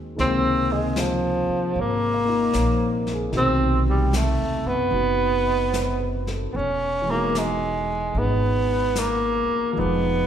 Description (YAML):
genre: jazz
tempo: 75 BPM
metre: 4/4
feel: swing 66% on 8ths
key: unclear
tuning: A4 = 443 Hz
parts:
  - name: warm concert grand piano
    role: accompaniment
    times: 0.0-10.3 s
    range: B2 to F5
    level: -27 LUFS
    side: left 1 dB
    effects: none
  - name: upright bass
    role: bass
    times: 0.0-10.3 s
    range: E1 to F#2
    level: -26 LUFS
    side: equal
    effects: none
  - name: breathy tenor saxophone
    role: melody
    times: 0.2-10.3 s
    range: F3 to Db4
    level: -22 LUFS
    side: right 1 dB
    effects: none
  - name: vintage brush drum kit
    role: drums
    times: 0.2-10.3 s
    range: brushed snare drum, hi-hat, snare drum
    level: -34 LUFS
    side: left 3 dB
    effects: none
room: wet recital hall reverb, RT60 1.4 s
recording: recorded in a church or concert hall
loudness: -20 LUFS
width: side -9 dB against mid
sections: 0.0-10.3 A section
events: none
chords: 0.2 Dbmaj13; 3.3 B7b9; 6.5 Emaj7; 9.8 Fm7b5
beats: | 0.17 0.96 1.75 2.54 | 3.33 4.13 4.93 5.74 | 6.54 7.35 8.16 8.96 | 9.76